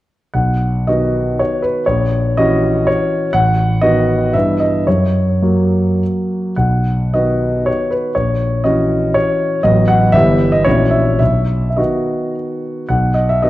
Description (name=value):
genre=classical, romantic triple-time dance for piano with dotted rhythms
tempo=100-134 BPM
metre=3/4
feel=rubato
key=B major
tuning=A4 = 440 Hz
part: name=warm concert grand piano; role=solo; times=0.3-13.5 s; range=G1 to F#5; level=-13 LUFS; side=equal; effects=none
room=moderate recital hall reverb, RT60 1.5 s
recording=dark, warm production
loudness=-13 LUFS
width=side -16 dB against mid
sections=0.3-12.9 A section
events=none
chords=0.3 B; 1.9 F#7/A#; 3.3 B7/A; 4.3 Em/G; 4.9 F#; 6.6 B; 8.2 F#7/A#; 9.6 B7/A; 10.1 Em/G; 10.7 F#7/A#; 11.2 B